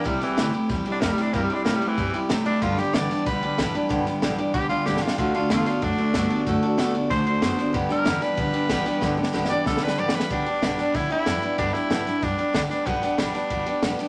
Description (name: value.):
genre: rockabilly.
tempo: 188 BPM.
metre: 4/4.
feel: straight.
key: G major.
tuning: A4 = 440 Hz.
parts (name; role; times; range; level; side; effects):
raspy tenor saxophone; melody; 0.0-13.8 s; E3 to D5; -29 LUFS; equal; none.
picked steel-string acoustic guitar; accompaniment; 0.0-14.1 s; G2 to A4; -28 LUFS; equal; none.
electric guitar through a small old amp; riff; 0.0-10.3 s; G2 to B3; -30 LUFS; equal; none.
upright bass; bass; 0.1-14.0 s; F1 to A2; -36 LUFS; equal; none.
compact cocktail drum kit; drums; 0.1-14.1 s; kick drum, ride cymbal, snare drum; -31 LUFS; equal; none.
room: wet studio ambience, RT60 0.5 s.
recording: faint mains hum.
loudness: -24 LUFS.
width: mono.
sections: 0.0-10.3 A section; 10.3-14.1 B section.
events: tenor saxophone solo 0.0-10.3; drum fill 4.9-5.2, 9.0-10.3.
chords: 0.1 C; 2.6 G; 5.2 D; 7.7 G.